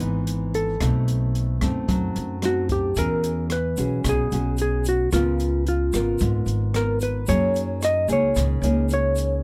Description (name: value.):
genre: bossa nova.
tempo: 111 BPM.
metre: 4/4.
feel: straight.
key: unclear.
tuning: A4 = 440 Hz.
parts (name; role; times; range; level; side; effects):
hollow-body jazz guitar; melody; 0.0-9.4 s; E#4 to D#5; -27 LUFS; equal; none.
nylon-string guitar; accompaniment; 0.0-9.4 s; G#2 to A#4; -29 LUFS; equal; none.
upright bass; bass; 0.0-9.4 s; G#1 to F#2; -27 LUFS; equal; none.
open jazz drum kit; drums; 0.0-9.3 s; hi-hat, kick drum, rim click; -32 LUFS; equal; none.
wooden-headed alto flute; second line; 2.4-9.4 s; E#4 to D#5; -35 LUFS; equal; none.
tube shaker; percussion; 3.0-9.4 s; none; -42 LUFS; equal; none.
room: little or no reverb.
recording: close, detailed microphones.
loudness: -23 LUFS.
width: mono.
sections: 0.0-9.4 A section.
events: none.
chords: 0.0 C#m9 (rootless); 0.8 B7b9; 3.0 E69; 5.1 C#6; 7.3 F#69.